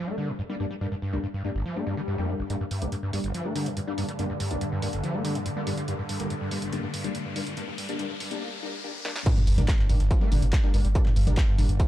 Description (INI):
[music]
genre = driving peak-time techno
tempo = 142 BPM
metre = 4/4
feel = straight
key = G minor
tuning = A4 = 440 Hz
[part]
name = screaming distorted acid line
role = riff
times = 0.0-11.9 s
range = G1 to Bb3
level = -31 LUFS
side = equal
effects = distortion, lush chorus, sidechain pumping, tape echo
[part]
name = rave stab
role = stabs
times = 0.1-11.7 s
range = G3 to D4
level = -33 LUFS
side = left 2 dB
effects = chorus, built-in reverb, sidechain pumping, tape echo
[part]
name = swell, riser and sub drop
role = sound effects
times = 1.8-11.0 s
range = none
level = -37 LUFS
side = left 1 dB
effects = none
[part]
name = swarming drone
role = drone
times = 3.4-11.9 s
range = G2 to D3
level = -36 LUFS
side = equal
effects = built-in reverb, sidechain pumping
[part]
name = punchy analog drum machine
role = drums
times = 2.5-11.9 s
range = crash cymbal, handclaps, hi-hat, snare drum, toms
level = -34 LUFS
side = right 1 dB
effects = high-pass filter on hats, high-pass filter on snare, high-pass filter on cymbals, high-pass filter on toms
[part]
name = dusty soul sampler-style drum kit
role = drums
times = 9.3-11.9 s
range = hi-hat, snare drum, tambourine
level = -46 LUFS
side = equal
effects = none
[part]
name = electronic kick drum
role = drums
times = 9.3-11.9 s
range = none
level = -22 LUFS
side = equal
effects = distortion, overdrive
[part]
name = saturated sub bass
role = bass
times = 9.5-11.8 s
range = G1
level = -23 LUFS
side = equal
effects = sidechain pumping, low-pass filter
[sound]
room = light reverb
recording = dark, warm production, high-pass filter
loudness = -25 LUFS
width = side -13 dB against mid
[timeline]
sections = 0.0-2.5 A section; 2.5-9.3 B section; 9.3-11.9 C section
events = filter sweep on acid bass 0.0-2.5, 2.5-9.3; swell 1.8-2.5; build-up 2.5-9.3; riser 2.5-9.3; filter sweep 2.5-9.3; drum fill 9.1; drop 9.3-11.9; impact 9.3-11.0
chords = 0.0 Gm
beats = 0.39 | 0.81 1.23 1.66 2.08 | 2.50 2.92 3.35 3.77 | 4.19 4.61 5.04 5.46 | 5.88 6.30 6.73 7.15 | 7.57 7.99 8.42 8.84 | 9.26 9.68 10.11 10.53 | 10.95 11.37 11.80